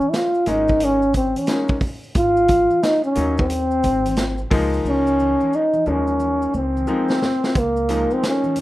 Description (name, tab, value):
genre	hip hop, jazz-hop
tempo	89 BPM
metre	4/4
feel	swing 64% on 16ths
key	unclear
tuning	A4 = 440 Hz
part	trombone with bucket mute	melody	0.0-8.6 s	Bb3 to F4	-18 LUFS	equal	plate reverb
part	congas and maracas	percussion	0.0-8.6 s	none	-36 LUFS	right 2 dB	none
part	vintage drum kit	drums	0.1-8.6 s	hi-hat, kick drum, snare drum	-23 LUFS	equal	none
part	bright upright piano	accompaniment	0.5-8.6 s	F3 to Eb4	-25 LUFS	left 3 dB	none
part	upright bass	bass	0.5-8.0 s	Ab1 to Eb2	-26 LUFS	equal	none
room	moderate studio reverb, RT60 0.5 s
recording	rough home demo mix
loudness	-17 LUFS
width	side -16 dB against mid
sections	0.0-7.6 A section; 7.6-8.6 B section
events	drum fill 4.9-7.6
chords	0.0 Gb69 (rootless); 2.2 Ab5; 4.5 Db69